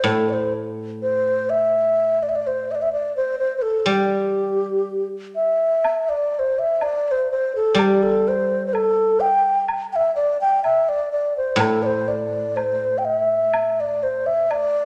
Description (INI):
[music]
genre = chinese traditional, Chinese chamber ensemble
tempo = 62 BPM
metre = 2/4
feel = rubato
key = G zhi mode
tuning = A4 = 440 Hz
[part]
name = breathy mellow low xiao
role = melody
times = 0.0-14.8 s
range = G4 to G5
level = -21 LUFS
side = equal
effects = none
[part]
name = guzheng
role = accompaniment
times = 0.0-14.5 s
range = A2 to G3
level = -27 LUFS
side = equal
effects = none
[part]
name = woodblock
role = percussion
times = 5.8-14.7 s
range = none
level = -32 LUFS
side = equal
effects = none
[sound]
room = moderate recital hall reverb, RT60 1.6 s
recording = none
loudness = -21 LUFS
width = mono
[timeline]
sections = 0.0-5.8 A section; 5.8-14.8 B section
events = none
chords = none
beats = | 0.05 1.01 | 1.97 2.93 | 3.88 4.84 | 5.82 6.80 | 7.77 8.73 | 9.67 10.63 | 11.58 12.55 | 13.52 14.49